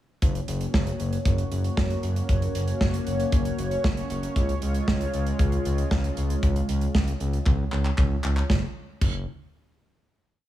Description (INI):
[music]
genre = synth-pop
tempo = 116 BPM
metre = 4/4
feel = straight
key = F# major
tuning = A4 = 440 Hz
[part]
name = chorused pulse-width pad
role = sustained chords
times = 0.2-8.5 s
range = G#3 to C#5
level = -31 LUFS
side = equal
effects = none
[part]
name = smooth synth bass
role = bass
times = 0.2-9.3 s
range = F#1 to C#2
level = -26 LUFS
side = equal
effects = none
[part]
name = modern studio drum kit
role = drums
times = 0.2-9.1 s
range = crash cymbal, handclaps, hi-hat, kick drum, snare drum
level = -26 LUFS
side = equal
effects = none
[sound]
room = small room ambience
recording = none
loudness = -23 LUFS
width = side -13 dB against mid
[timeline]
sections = 0.2-8.5 verse; 8.5-10.5 final note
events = drum fill 7.5-8.5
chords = 0.2 F#; 4.4 C#; 8.5 N.C.